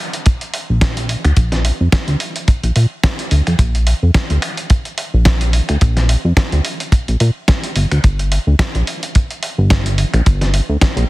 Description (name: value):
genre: nu-disco, nu disco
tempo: 108 BPM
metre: 4/4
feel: swing 56% on 16ths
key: Bb major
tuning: A4 = 437 Hz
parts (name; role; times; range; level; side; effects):
- dusty soul sampler-style drum kit; drums; 0.1-11.1 s; finger snaps, hi-hat, snare drum; -20 LUFS; equal; none
- kick drum; drums; 0.3-10.9 s; none; -12 LUFS; equal; none
- chorused synth bass; bass; 0.7-11.0 s; G1 to Bb2; -14 LUFS; equal; none
room: little or no reverb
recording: heavily compressed radio sound, multiband compression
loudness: -13 LUFS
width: side -19 dB against mid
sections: 0.0-11.1 A section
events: none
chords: none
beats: 0.26 0.82 | 1.37 1.93 2.48 3.04 | 3.59 4.15 4.71 5.26 | 5.82 6.37 6.93 7.48 | 8.04 8.59 9.15 9.71 | 10.26 10.82